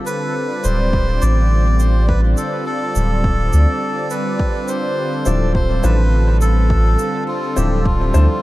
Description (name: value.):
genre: ambient dub.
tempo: 104 BPM.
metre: 4/4.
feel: straight.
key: D dorian.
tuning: A4 = 440 Hz.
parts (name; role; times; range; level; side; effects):
warm analog pad; sustained chords; 0.0-8.4 s; D3 to D5; -22 LUFS; equal; chorus.
melodica; melody; 0.1-8.4 s; F4 to D5; -23 LUFS; equal; dub echo.
shaker; drums; 0.1-8.3 s; none; -31 LUFS; right 5 dB; none.
soft dub sub bass; bass; 0.6-8.3 s; D1 to D2; -14 LUFS; equal; none.
electronic kick drum; drums; 0.9-8.0 s; none; -20 LUFS; equal; overdrive.
warm upright piano; stabs; 5.3-8.3 s; F3 to C5; -25 LUFS; left 4 dB; dub echo.
room: light reverb, digital ambience.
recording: none.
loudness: -14 LUFS.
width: side -17 dB against mid.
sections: 0.0-8.4 A section.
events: none.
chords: 0.0 Dm7.